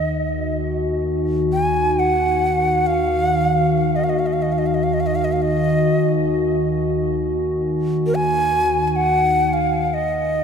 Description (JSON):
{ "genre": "world meditative, free-time meditation music", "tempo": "free time", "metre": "none", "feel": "none", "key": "Eb minor", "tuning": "A4 = 440 Hz", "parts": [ { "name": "breathy Native American-style cedar flute", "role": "melody", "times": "0.0-10.4 s", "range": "Bb4 to Ab5", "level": "-20 LUFS", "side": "equal", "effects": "diffuse ambient delay" }, { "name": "deep dark ambient pad", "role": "drone", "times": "0.0-10.4 s", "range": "Eb2 to Eb3", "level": "-21 LUFS", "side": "equal", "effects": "chorus, built-in reverb" }, { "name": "glass harmonica", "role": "texture", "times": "0.3-9.2 s", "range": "Gb4", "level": "-23 LUFS", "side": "left 2 dB", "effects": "stereo widening" } ], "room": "moderate huge ambient reverb, RT60 4.1 s", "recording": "none", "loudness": "-17 LUFS", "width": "side -6 dB against mid", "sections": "0.0-10.4 A section", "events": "none", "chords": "none", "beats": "free time" }